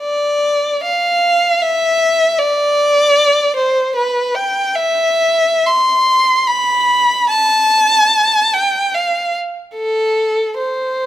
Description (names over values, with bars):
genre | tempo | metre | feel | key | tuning
classical, free, expressive piece for unaccompanied violin | 63-79 BPM | 3/4 | rubato | C major | A4 = 440 Hz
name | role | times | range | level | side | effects
rich violin | solo | 0.0-11.1 s | A4 to C6 | -12 LUFS | equal | none
room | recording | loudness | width
moderate recital hall reverb, RT60 1.6 s | close, detailed microphones | -12 LUFS | side -12 dB against mid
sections
0.0-11.1 A section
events
none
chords
none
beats
| 0.01 0.83 1.62 | 2.38 3.16 3.95 | 4.75 5.66 6.46 | 7.29 8.12 8.94 | 9.75 10.58